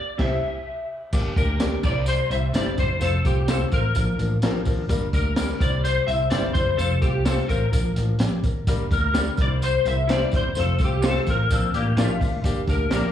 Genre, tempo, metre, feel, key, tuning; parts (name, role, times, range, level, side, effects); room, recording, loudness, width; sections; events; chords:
uptempo 1960s-style soul; 127 BPM; 4/4; straight; F major; A4 = 440 Hz
clean electric guitar; melody; 0.0-13.1 s; G4 to E5; -26 LUFS; left 2 dB; ensemble chorus, slapback echo, plate reverb
warm grand piano; accompaniment; 0.2-13.1 s; F3 to E5; -30 LUFS; left 6 dB; plate reverb, slapback echo
electric guitar through a small old amp; stabs; 0.2-0.4, 9.1-13.0 s; E4 to D5; -33 LUFS; right 5 dB; plate reverb, slapback echo
vintage muted fingered electric bass; bass; 0.2-13.1 s; F1 to D2; -24 LUFS; equal
crunchy breakbeat drum kit; drums; 0.2-13.1 s; crash cymbal, hi-hat, kick drum, snare drum; -25 LUFS; right 1 dB
tambourine; percussion; 1.1-13.0 s; -41 LUFS; right 2 dB
clean electric guitar; riff; 11.5-13.1 s; A3 to Bb4; -28 LUFS; left 6 dB; ensemble chorus, slapback echo
light reverb; live gig heard through the venue's PA, club reverb, small room reverb; -20 LUFS; side -10 dB against mid
0.0-1.1 A section; 1.1-13.1 B section
band accent 0.0-1.1
0.2 C; 1.1 Gm; 1.8 C; 3.0 F; 4.0 Bb; 4.9 Gm; 5.6 C; 6.8 F; 7.7 Bb; 8.7 Gm; 9.4 C; 10.6 F; 11.5 Bb; 12.4 Gm